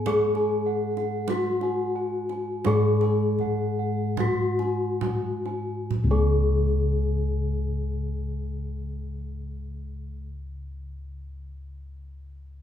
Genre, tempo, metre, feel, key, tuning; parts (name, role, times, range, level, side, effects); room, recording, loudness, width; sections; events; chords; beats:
Javanese gamelan; 32-51 BPM; 4/4; straight; A4 = 441 Hz
gamelan-type bronze metallophone; melody; 0.0-10.3 s; F#4-20c to G#4+20c; -26 LUFS; left 2 dB
gamelan-type bronze metallophone; accompaniment; 0.0-10.3 s; G#3+20c; -34 LUFS; right 1 dB
gamelan-type bronze metallophone; arpeggios; 0.0-10.3 s; F#5-20c to G#5+20c; -39 LUFS; right 6 dB
gamelan-type bossed gongs; bass; 0.0-10.2 s; C#2 to G#4+20c; -28 LUFS; left 1 dB
gamelan-type bossed gongs; arpeggios; 0.1-10.3 s; F#5-20c to G#5+20c; -43 LUFS; left 1 dB
kendang; percussion; 0.1-6.8 s; -34 LUFS; right 3 dB
wet large studio reverb, RT60 1.3 s; band playing live in one room; -23 LUFS; side -10 dB against mid
0.0-5.9 A section; 5.9-12.6 B section
slowing down 0.0-5.9
| 0.07 1.30 2.66 4.19 | 5.92 7.77 9.62